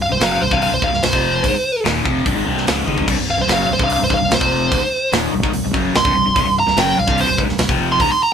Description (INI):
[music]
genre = hard rock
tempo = 146 BPM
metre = 4/4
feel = straight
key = C minor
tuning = A4 = 436 Hz
[part]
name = biting lead guitar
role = melody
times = 0.0-8.3 s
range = C5 to C6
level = -16 LUFS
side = right 2 dB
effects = overdrive
[part]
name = crunchy overdriven guitar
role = riff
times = 0.0-8.1 s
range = C2 to Ab3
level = -21 LUFS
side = left 7 dB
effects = phaser
[part]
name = sludgy distorted guitar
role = riff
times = 0.0-8.1 s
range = C2 to Ab3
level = -24 LUFS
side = right 6 dB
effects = overdrive
[part]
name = fingered electric bass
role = bass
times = 0.0-8.1 s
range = C1 to Ab1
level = -25 LUFS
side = equal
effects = none
[part]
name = tight metal drum kit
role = drums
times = 0.2-8.1 s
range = crash cymbal, hi-hat, kick drum, snare drum, toms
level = -21 LUFS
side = equal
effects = none
[sound]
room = light reverb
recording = band playing live in one room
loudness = -14 LUFS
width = side -7 dB against mid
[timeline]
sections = 0.0-8.3 A section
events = lead electric guitar solo 0.0-8.3; drum fill 2.9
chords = 0.0 Cm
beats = 0.20 0.61 1.02 | 1.43 1.84 2.25 2.66 | 3.08 3.48 3.90 4.31 | 4.72 5.13 5.54 5.95 | 6.36 6.77 7.18 7.59 | 8.00